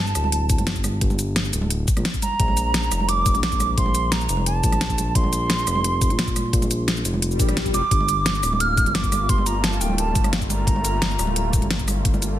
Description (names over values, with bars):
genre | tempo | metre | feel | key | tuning
liquid drum and bass | 174 BPM | 4/4 | straight | G minor | A4 = 441 Hz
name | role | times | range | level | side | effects
mellow hollow concert flute | melody | 0.0-11.8 s | G5 to F6 | -25 LUFS | right 3 dB | digital delay
smooth synth bass | bass | 0.0-12.4 s | D1 to Bb1 | -24 LUFS | equal | none
pop drum kit | drums | 0.1-12.3 s | hi-hat, rim click, shaker, snare drum | -25 LUFS | left 1 dB | studio reverb
congas | percussion | 0.2-12.2 s | none | -31 LUFS | right 3 dB | none
electronic kick drum | drums | 0.5-12.1 s | none | -22 LUFS | equal | studio reverb
swell | sound effects | 7.3-7.9 s | none | -29 LUFS | left 5 dB | none
warm analog pad | sustained chords | 7.9-12.4 s | G3 to F4 | -30 LUFS | left 1 dB | chorus, sidechain pumping
room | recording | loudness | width
light reverb, digital ambience | dense, heavily limited modern master | -18 LUFS | side -12 dB against mid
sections
0.0-12.4 A section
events
swell 7.3-7.9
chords
0.0 Gsus2; 2.4 Bbsus2; 7.9 Gm9